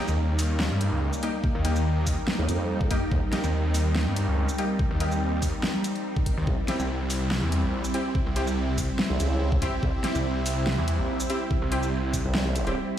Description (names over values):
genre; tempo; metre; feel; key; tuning
heavy wobble dubstep; 143 BPM; 4/4; swing 54% on 16ths, half-time; unclear; A4 = 440 Hz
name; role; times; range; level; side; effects
supersaw pad; sustained chords; 0.0-13.0 s; G3 to E4; -31 LUFS; right 2 dB; phaser, sidechain pumping
orchestra-hit-like synth stab; stabs; 0.0-12.7 s; Bb3 to G4; -33 LUFS; left 1 dB; built-in reverb, ping-pong delay
warbly tape-like pad; texture; 0.0-13.0 s; C4 to G5; -35 LUFS; equal; chorus, built-in reverb, phaser, sidechain pumping
snarling distorted saw bass; bass; 0.1-12.2 s; Bb1 to G2; -26 LUFS; equal; overdrive
dubstep drum kit; drums; 0.1-12.7 s; hi-hat, shaker, snare drum; -31 LUFS; equal; overdrive
electronic kick drum; drums; 1.4-12.2 s; none; -26 LUFS; equal; overdrive
formant-sweep wobble bass; bass; 2.4-3.2, 6.5-6.6, 9.1-12.8 s; C2 to F2; -26 LUFS; equal; chorus, overdrive
room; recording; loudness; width
light reverb, digital ambience; played on a big sound system in a bare room, stone room reverb; -23 LUFS; side -10 dB against mid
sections
0.0-13.0 A section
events
break 12.8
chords
0.0 Eb; 6.5 C